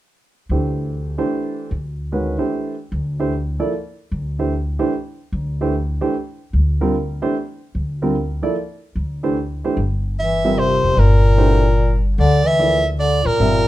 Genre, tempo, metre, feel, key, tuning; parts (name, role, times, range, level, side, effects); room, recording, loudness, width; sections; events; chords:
modal jazz; 149 BPM; 3/4; swing 66% on 8ths; G dorian; A4 = 436 Hz
warm grand piano; accompaniment; 0.5-13.7 s; D3 to E5; -21 LUFS; right 2 dB
upright bass; bass; 0.5-13.7 s; F1 to D2; -19 LUFS; equal
warm soprano saxophone; melody; 10.2-13.7 s; Bb4 to E5; -18 LUFS; right 1 dB
mellow bass clarinet; second line; 10.2-13.7 s; Bb2 to E3; -20 LUFS; left 3 dB
light reverb; minimal, uncompressed stereo recording; -17 LUFS; side -15 dB against mid
0.1-9.8 A section; 9.8-13.7 B section
0.1 Gsus2; 4.9 Am7; 9.8 Gm69